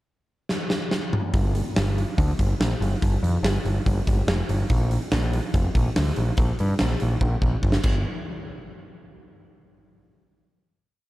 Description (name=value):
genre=classic rock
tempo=143 BPM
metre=4/4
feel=straight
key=G minor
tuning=A4 = 439 Hz
part: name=huge arena drum kit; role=drums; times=0.5-7.9 s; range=crash cymbal, hi-hat, kick drum, snare drum, toms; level=-24 LUFS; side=equal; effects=none
part: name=growling picked electric bass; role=bass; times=1.3-8.0 s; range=F1 to G2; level=-23 LUFS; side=equal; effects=overdrive
room=little or no reverb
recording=none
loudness=-21 LUFS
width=side -17 dB against mid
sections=0.0-1.3 pickup bar; 1.3-8.1 riff; 8.1-9.7 final hit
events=drum fill 0.5-1.3, 7.2-8.1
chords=none